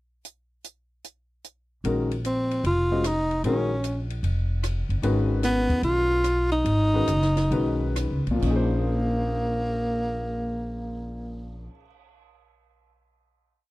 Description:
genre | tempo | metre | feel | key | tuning
modal jazz | 128-151 BPM | 4/4 | swing 67% on 8ths | Bb phrygian | A4 = 440 Hz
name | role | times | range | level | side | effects
compact cocktail drum kit | drums | 0.2-12.1 s | crash cymbal, cymbal swell, hi-hat, kick drum, ride cymbal, rim click, snare drum | -37 LUFS | equal | none
warm grand piano | accompaniment | 1.8-11.8 s | Bb2 to Eb5 | -28 LUFS | left 3 dB | none
upright bass | bass | 1.8-11.7 s | F1 to Eb2 | -26 LUFS | equal | none
warm tenor saxophone | melody | 2.3-11.7 s | Bb3 to F4 | -26 LUFS | equal | none
room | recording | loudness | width
little or no reverb | dry, close 1970s-style studio recording, faint mains hum | -22 LUFS | side -19 dB against mid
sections
0.2-1.8 pickup bar; 1.8-8.4 A section; 8.4-12.2 final chord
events
slowing down 5.0-8.4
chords
0.2 N.C.; 1.8 Bbm11; 5.0 Abm7; 8.4 Bbm11

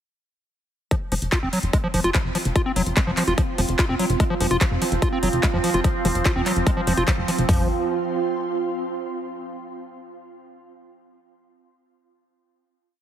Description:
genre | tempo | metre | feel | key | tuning
psychedelic trance | 146 BPM | 4/4 | straight | unclear | A4 = 439 Hz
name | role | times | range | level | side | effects
overdriven acid bass | riff | 0.9-7.7 s | F3 to F4 | -25 LUFS | equal | auto-pan, cassette tape, sidechain pumping, dub echo
big-room dance drum kit | drums | 0.9-7.6 s | hi-hat, kick drum, toms | -22 LUFS | equal | none
big-room dance drum kit | drums | 0.9-7.5 s | handclaps, hi-hat | -28 LUFS | equal | none
ethereal airy pad | texture | 2.0-9.1 s | C4 to C6 | -28 LUFS | right 4 dB | ensemble chorus, built-in reverb, sidechain pumping
plucky analog bass | bass | 1.1-7.7 s | F1 | -24 LUFS | equal | none
overtone-sweeping drone | sustained chords | 4.8-7.5 s | F3 to C4 | -29 LUFS | right 2 dB | chorus, built-in reverb, sidechain pumping
room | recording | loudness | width
moderate lush hall reverb, RT60 2.0 s | heavily compressed radio sound, multiband compression | -19 LUFS | side -10 dB against mid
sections
0.9-7.5 groove; 7.5-9.1 final chord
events
none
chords
0.9 F5

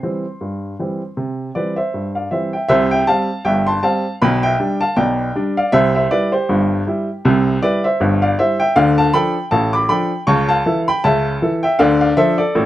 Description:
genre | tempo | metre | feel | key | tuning
ragtime piano | 79 BPM | 2/4 | swing 57% on 16ths | C major | A4 = 441 Hz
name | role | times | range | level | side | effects
warm upright piano | solo | 0.0-12.7 s | G1 to D6 | -14 LUFS | equal | none
room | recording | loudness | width
light reverb | close, detailed microphones | -14 LUFS | side -14 dB against mid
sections
0.0-2.7 A section; 2.7-12.7 B section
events
none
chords
0.0 C; 4.2 G/B; 5.7 C; 8.8 Dm; 10.3 A/C#; 11.8 Dm

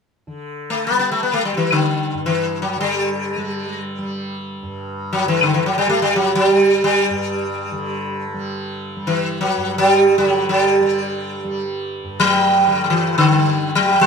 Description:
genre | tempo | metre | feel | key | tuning
indian classical, Hindustani | free time | none | none | unclear | A4 = 440 Hz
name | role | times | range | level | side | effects
tanpura | drone | 0.3-14.1 s | G2 to G3 | -27 LUFS | equal | none
sitar | melody | 0.7-14.1 s | D3 to B3 | -16 LUFS | equal | none
room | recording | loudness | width
light reverb | close, detailed microphones | -16 LUFS | side -5 dB against mid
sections
0.3-14.1 A section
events
none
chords
none

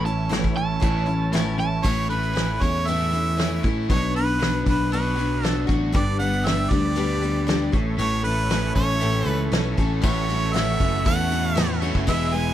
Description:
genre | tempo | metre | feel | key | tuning
folk rock and heartland rock | 117 BPM | 4/4 | straight | unclear | A4 = 440 Hz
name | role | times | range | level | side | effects
overdriven slide guitar | second line | 0.0-1.8 s | A5 | -28 LUFS | right 5 dB | none
picked steel-string acoustic guitar | accompaniment | 0.0-12.5 s | E2 to A4 | -28 LUFS | left 5 dB | none
musette accordion | sustained chords | 0.0-1.8, 5.9-12.5 s | A3 to E6 | -36 LUFS | right 4 dB | none
overdriven electric guitar | riff | 0.0-12.5 s | E2 to A4 | -29 LUFS | right 1 dB | none
picked electric bass | bass | 0.0-12.5 s | E1 to A2 | -25 LUFS | equal | none
soft brush drum kit | drums | 0.1-12.4 s | crash cymbal, hi-hat, kick drum, ride cymbal, snare drum | -25 LUFS | equal | none
clear harmonica | melody | 1.8-12.5 s | B4 to G#5 | -26 LUFS | right 2 dB | none
room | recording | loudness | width
small room ambience | none | -20 LUFS | side -12 dB against mid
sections
0.0-1.8 A section; 1.8-10.0 B section; 10.0-12.5 C section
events
electric slide guitar solo 0.0-1.8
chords
0.0 A; 3.9 Bm; 5.9 G; 7.7 A; 10.0 A6

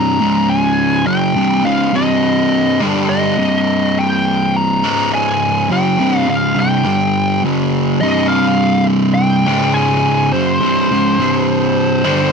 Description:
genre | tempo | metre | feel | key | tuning
metal | 104 BPM | 4/4 | straight | C phrygian | A4 = 440 Hz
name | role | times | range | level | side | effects
fuzz lead guitar | melody | 0.0-12.3 s | C5 to Bb5 | -17 LUFS | equal | wah, distortion, slapback echo
fuzz guitar | riff | 0.0-12.3 s | C2 to G3 | -14 LUFS | equal | distortion
room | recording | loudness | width
little or no reverb | dry, close 1970s-style studio recording | -12 LUFS | side -5 dB against mid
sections
0.0-8.0 A section; 8.0-12.3 B section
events
none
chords
0.2 Db5; 1.1 Cm; 2.8 G5; 3.4 Cm; 4.8 Db5; 5.7 C5; 6.9 G5; 7.4 F#5; 8.0 C5; 9.5 Db5; 10.3 C5

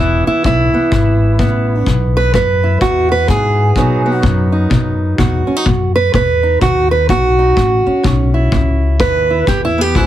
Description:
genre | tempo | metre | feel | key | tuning
acoustic country blues, solo or duo | 126 BPM | 4/4 | swing 61% on 8ths | E major | A4 = 440 Hz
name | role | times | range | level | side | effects
fingerpicked steel-string acoustic guitar | melody | 0.0-10.1 s | E2 to B4 | -13 LUFS | right 2 dB | none
upright bass | bass | 0.0-10.1 s | E1 to B2 | -15 LUFS | left 1 dB | none
kick drum | drums | 0.4-10.1 s | none | -19 LUFS | left 2 dB | none
room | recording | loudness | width
light reverb | heavily compressed radio sound | -11 LUFS | side -12 dB against mid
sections
0.0-10.1 A section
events
steel-string acoustic guitar solo 0.0-10.1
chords
0.0 E; 3.8 B; 7.6 A; 9.5 E5

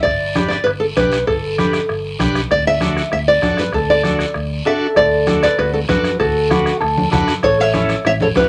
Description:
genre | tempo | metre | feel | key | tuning
latin, cumbia | 195 BPM | 4/4 | straight | D major | A4 = 440 Hz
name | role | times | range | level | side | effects
nylon-string guitar | melody | 0.0-8.5 s | F#4 to E5 | -18 LUFS | equal | none
fingered electric bass | bass | 0.0-8.5 s | G1 to F#2 | -27 LUFS | equal | none
bombo | percussion | 0.0-8.5 s | none | -29 LUFS | equal | none
guiro | percussion | 0.0-8.5 s | none | -32 LUFS | equal | none
combo organ | accompaniment | 0.4-8.5 s | C#4 to B4 | -25 LUFS | equal | phaser
congas | percussion | 0.4-8.5 s | none | -24 LUFS | equal | none
electric guitar at the edge of break-up | second line | 6.5-7.3 s | F#4 to A4 | -21 LUFS | equal | none
room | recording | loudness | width
wet small room reverb, RT60 0.5 s | none | -16 LUFS | mono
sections
0.0-5.0 A section; 5.0-8.5 A section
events
none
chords
0.0 G; 2.5 D; 7.4 A

